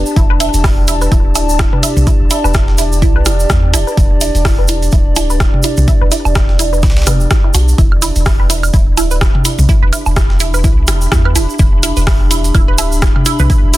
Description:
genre	minimal techno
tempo	126 BPM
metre	4/4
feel	swing 57% on 16ths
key	E minor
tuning	A4 = 444 Hz
part	resonant blip pluck	riff	0.0-13.8 s	B3 to B4	-21 LUFS	right 3 dB	chorus, phaser, vintage 12-bit sampler grit, sidechain pumping, ping-pong delay
part	punchy sub bass	bass	0.0-13.7 s	D1 to E2	-14 LUFS	equal	tube saturation, sidechain pumping
part	warbly tape-like pad	texture	0.0-13.8 s	D4 to B5	-20 LUFS	equal	chorus, built-in reverb, sidechain pumping
part	tube shaker	percussion	0.1-13.8 s	none	-22 LUFS	right 4 dB	none
part	breakbeat sampler-style drum kit	drums	0.2-13.8 s	hi-hat, snare drum	-26 LUFS	right 1 dB	sidechain pumping on hats, high-pass filter on hats, high-pass filter on snare
part	electronic kick drum	drums	0.2-13.6 s	none	-12 LUFS	equal	none
part	techno drum kit	drums	0.4-13.8 s	hi-hat, rim click	-19 LUFS	equal	soft clipping on snare
part	electronic woodblock and toms	percussion	1.4-13.5 s	none	-19 LUFS	right 1 dB	none
room	little or no reverb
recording	dense, heavily limited modern master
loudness	-9 LUFS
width	side -16 dB against mid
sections	0.0-7.8 A section; 7.8-13.8 B section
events	drop 7.8-13.8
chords	0.0 Em7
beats	| 0.16 0.64 1.12 1.59 | 2.07 2.54 3.02 3.50 | 3.97 4.45 4.93 5.40 | 5.88 6.36 6.83 7.31 | 7.78 8.26 8.74 9.21 | 9.69 10.16 10.64 11.12 | 11.59 12.07 12.54 13.02 | 13.50

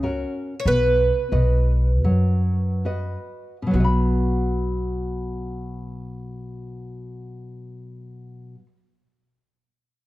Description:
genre	fado-style ballad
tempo	66-98 BPM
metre	4/4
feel	rubato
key	B major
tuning	A4 = 440 Hz
part	picked twelve-string acoustic guitar	melody	0.0-2.8 s	B4 to C#5	-24 LUFS	right 2 dB	none
part	nylon-string guitar	accompaniment	0.0-8.8 s	B2 to B5	-27 LUFS	equal	none
part	upright bass	bass	0.0-8.7 s	B1 to F#2	-22 LUFS	equal	none
room	little or no reverb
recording	dark, warm production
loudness	-19 LUFS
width	side -17 dB against mid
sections	0.0-3.7 A section; 3.7-7.3 B section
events	slowing down 0.0-3.7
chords	0.0 F#; 0.7 B; 3.7 B5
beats	0.04 | 0.66 1.33 2.06 2.86 | 3.74 4.64 5.52 6.39

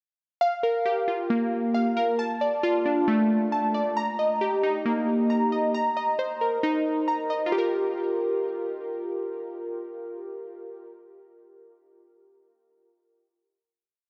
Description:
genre	hip hop, trap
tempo	135 BPM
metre	4/4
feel	half-time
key	G minor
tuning	A4 = 439 Hz
part	glassy digital keys	solo	0.4-10.9 s	A3 to Bb5	-26 LUFS	equal	chorus, low-pass filter, delay
room	moderate huge ambient reverb, RT60 6.5 s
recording	none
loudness	-26 LUFS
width	mono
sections	0.4-7.5 breakdown; 7.5-11.1 final chord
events	none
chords	0.4 Gm7; 2.2 Dm; 4.0 Eb; 5.7 Cm7; 7.5 Gm7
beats	| 0.41 0.85 1.30 1.74 | 2.19 2.63 3.08 3.52 | 3.97 4.41 4.86 5.30 | 5.74 6.19 6.63 7.08 | 7.52 7.97 8.41 8.86 | 9.30 9.74 10.19 10.63

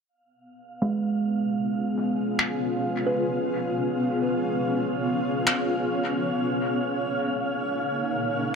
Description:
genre	ambient dub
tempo	free time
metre	none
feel	none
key	unclear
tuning	A4 = 444 Hz
part	granular cloud pad	sustained chords	1.3-8.6 s	Bb3 to Db5	-26 LUFS	left 1 dB	built-in reverb
part	wind-like tuned noise texture	texture	0.7-8.6 s	F5	-33 LUFS	right 2 dB	built-in reverb
part	kalimba	arpeggios	0.8-6.4 s	Ab3 to Cb5	-29 LUFS	right 3 dB	low-pass filter, dub echo
part	electronic finger snaps	drums	2.4-5.6 s	none	-25 LUFS	equal	low-pass filter on snare, low-pass filter on room, dub echo
room	moderate echo chamber reverb, RT60 2.2 s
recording	dark, warm production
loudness	-24 LUFS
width	side -5 dB against mid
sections	0.1-8.6 A section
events	filter sweep on ambient pad 0.1-8.6; filter sweep on kalimba 0.1-8.6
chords	0.1 Db7; 6.2 Ebm7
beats	free time

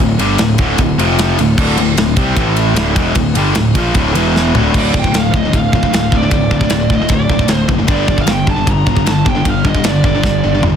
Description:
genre	heavy metal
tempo	152 BPM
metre	4/4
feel	straight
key	D minor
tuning	A4 = 440 Hz
part	cranked stack guitar	riff	0.0-4.7 s	D2 to C4	-19 LUFS	right 2 dB	overdrive
part	heavy high-gain guitar	riff	0.0-10.8 s	D2 to C4	-17 LUFS	left 9 dB	distortion
part	heavy high-gain guitar	riff	0.0-10.8 s	D2 to C4	-20 LUFS	right 12 dB	distortion
part	fuzz picked electric bass	bass	0.0-10.8 s	D1 to C2	-17 LUFS	equal	overdrive
part	tight metal drum kit	drums	0.0-10.7 s	crash cymbal, kick drum, ride cymbal, snare drum, toms	-16 LUFS	equal	soft clipping on snare
part	high-gain lead guitar	melody	4.8-10.6 s	D5 to Bb5	-19 LUFS	right 4 dB	distortion, ping-pong delay
room	studio reverb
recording	dense, heavily limited modern master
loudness	-11 LUFS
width	side -8 dB against mid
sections	0.0-4.7 A section; 4.7-10.8 B section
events	drum fill 4.3-4.7, 10.2-10.8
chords	0.0 D5; 1.0 F5; 1.4 D5; 2.4 A5; 2.8 Dm; 4.2 E5; 4.5 D5; 4.7 Dm; 7.9 G5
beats	| 0.01 0.41 0.80 1.20 | 1.59 1.98 2.38 2.77 | 3.17 3.56 3.96 4.35 | 4.74 5.14 5.53 5.93 | 6.32 6.71 7.11 7.50 | 7.89 8.29 8.68 9.07 | 9.46 9.85 10.24 10.63

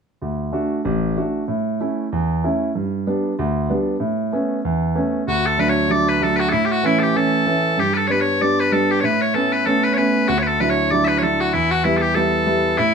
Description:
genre	celtic folk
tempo	191 BPM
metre	4/4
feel	swing 57% on 8ths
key	D major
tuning	A4 = 440 Hz
part	clear concert grand piano	accompaniment	0.2-12.9 s	A1 to F#4	-19 LUFS	right 2 dB	none
part	loud bright bagpipes	melody	5.3-12.9 s	E4 to E5	-19 LUFS	left 2 dB	none
room	wet studio reverb, RT60 0.6 s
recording	dark, warm production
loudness	-17 LUFS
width	side -6 dB against mid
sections	0.2-5.3 A section; 5.3-12.9 B section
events	none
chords	0.2 D; 1.5 A; 2.7 G; 4.0 Aadd9; 5.3 D; 6.5 A; 7.8 G; 9.0 Aadd9; 10.3 Dadd9; 11.5 Em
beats	| 0.22 0.53 0.85 1.17 | 1.48 1.80 2.12 2.43 | 2.75 3.06 3.38 3.69 | 4.01 4.32 4.64 4.95 | 5.27 5.58 5.89 6.21 | 6.52 6.84 7.15 7.46 | 7.78 8.09 8.40 8.72 | 9.03 9.34 9.66 9.97 | 10.28 10.59 10.91 11.22 | 11.53 11.85 12.16 12.47 | 12.78

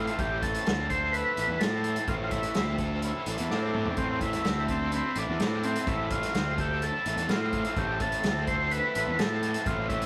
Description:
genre	psychedelic rock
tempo	127 BPM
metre	4/4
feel	straight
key	A minor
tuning	A4 = 439 Hz
part	combo organ	melody	0.0-10.1 s	C4 to C5	-33 LUFS	equal	none
part	tonewheel organ	sustained chords	0.0-10.1 s	C4 to A5	-44 LUFS	equal	none
part	biting overdriven guitar	riff	0.0-10.1 s	A2 to A4	-37 LUFS	equal	harmonic tremolo
part	fuzz picked electric bass	bass	0.0-10.0 s	A1 to A2	-34 LUFS	equal	overdrive
part	vintage drum kit	drums	0.1-10.1 s	hi-hat, kick drum, snare drum, toms	-35 LUFS	equal	none
room	wet small room reverb, RT60 0.6 s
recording	rough rehearsal-room recording, warm saturation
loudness	-28 LUFS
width	mono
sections	0.0-10.1 A section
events	drum fill 3.5-4.0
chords	0.0 Am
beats	| 0.18 0.66 1.13 1.61 | 2.08 2.56 3.03 3.50 | 3.98 4.45 4.92 5.40 | 5.87 6.34 6.82 7.29 | 7.76 8.24 8.71 9.19 | 9.66

